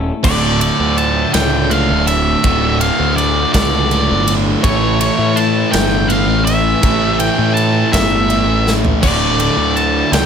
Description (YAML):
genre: quiet-loud alternative rock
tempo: 55 BPM (dotted quarters)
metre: 6/8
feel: straight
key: unclear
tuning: A4 = 440 Hz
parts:
  - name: fuzz picked electric bass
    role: bass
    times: 0.0-10.3 s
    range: D1 to A2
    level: -18 LUFS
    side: equal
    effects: overdrive
  - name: octave-fuzz lead guitar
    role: melody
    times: 0.2-10.3 s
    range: C#5 to A5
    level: -18 LUFS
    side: equal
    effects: distortion
  - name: fuzz guitar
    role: riff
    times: 0.2-10.3 s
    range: D2 to A3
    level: -22 LUFS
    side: left 11 dB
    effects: distortion
  - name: overdriven electric guitar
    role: riff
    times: 0.2-10.3 s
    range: D2 to A3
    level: -20 LUFS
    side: equal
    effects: none
  - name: sludgy distorted guitar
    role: riff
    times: 0.2-10.3 s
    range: D2 to A3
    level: -20 LUFS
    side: right 12 dB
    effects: overdrive
  - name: big rock drum kit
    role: drums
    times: 0.2-10.3 s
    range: crash cymbal, kick drum, ride cymbal, snare drum, toms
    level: -19 LUFS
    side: equal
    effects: none
room: light reverb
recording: none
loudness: -12 LUFS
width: side -7 dB against mid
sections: 0.2-10.3 A section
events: drum fill 8.7-9.0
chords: 0.2 D5; 4.6 A5; 9.0 D5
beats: | 0.24 1.34 | 2.44 3.54 | 4.64 5.74 | 6.83 7.93 | 9.03 10.12